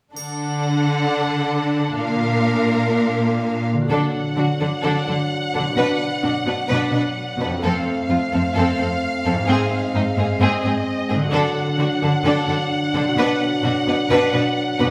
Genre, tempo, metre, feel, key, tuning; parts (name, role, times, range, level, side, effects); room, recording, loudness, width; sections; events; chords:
cinematic, heroic adventure film score; 129 BPM; 4/4; straight; A4 = 439 Hz
rich symphonic viola section; accompaniment; 0.1-14.9 s; C4 to D4; -29 LUFS; equal
clear symphonic cello section; bass; 0.1-14.9 s; F2 to D3; -24 LUFS; equal
warm symphonic violin section; melody; 0.2-14.9 s; D#5 to F#5; -28 LUFS; equal
rich symphonic violin section; second line; 0.2-14.9 s; D#4 to B4; -28 LUFS; equal
triangle; percussion; 0.2-1.1 s; -37 LUFS; equal
concert harp; arpeggios; 3.7-14.9 s; F2 to B4; -31 LUFS; equal
mellow French horn section; sustained chords; 3.9-14.9 s; F#3 to D4; -28 LUFS; equal
wet recital hall reverb, RT60 1.5 s; recorded in a church or concert hall; -20 LUFS; mono
0.2-3.9 A section; 3.9-14.9 B section
build-up 3.9-14.9
0.2 D; 2.0 Bb; 3.9 D; 5.8 Bm; 7.6 F; 9.5 G#; 11.3 D; 13.2 Bm